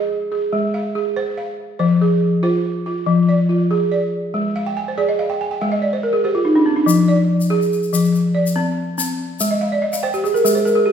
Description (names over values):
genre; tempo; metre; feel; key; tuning
west african traditional, West African string and xylophone music; 95 BPM (dotted quarters); 12/8; straight; F dorian; A4 = 439 Hz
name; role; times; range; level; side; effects
balafon; arpeggios; 0.0-10.9 s; F3 to Ab5; -16 LUFS; equal; none
egg shaker; percussion; 6.9-10.7 s; none; -26 LUFS; left 5 dB; none
room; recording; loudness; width
wet recital hall reverb, RT60 1.6 s; recorded in a church or concert hall; -16 LUFS; side -8 dB against mid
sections
0.0-6.9 A section; 6.9-10.9 B section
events
balafon fill 4.6-6.9, 9.5-10.9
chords
0.0 Ab; 1.8 Fm; 4.3 Ab; 6.9 Fm; 9.4 Ab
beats
0.53 1.17 | 1.80 2.44 3.08 3.71 | 4.35 4.98 5.61 6.25 | 6.88 7.51 8.14 8.77 | 9.39 10.02 10.65